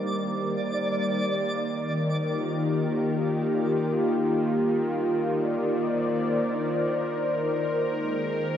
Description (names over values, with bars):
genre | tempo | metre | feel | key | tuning
ambient | 78 BPM | 4/4 | straight | Eb major | A4 = 440 Hz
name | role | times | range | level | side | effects
warm analog pad | sustained chords | 0.0-8.6 s | Eb3 to D5 | -25 LUFS | left 1 dB | chorus
handpan | arpeggios | 0.0-8.6 s | none | barely audible | none | none
bowed-like drone | drone | 0.0-8.6 s | Eb3 to Bb4 | -31 LUFS | equal | built-in reverb
twinkling granular texture | texture | 0.0-1.8 s | D5 | -32 LUFS | right 1 dB | built-in reverb
room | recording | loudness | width
wet lush hall reverb, RT60 2.8 s | worn, warbling old tape, cassette tape, warbly pitch drift | -24 LUFS | side -9 dB against mid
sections
0.0-1.7 A section; 1.7-8.6 B section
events
none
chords
0.0 Ebmaj13; 7.9 Ab69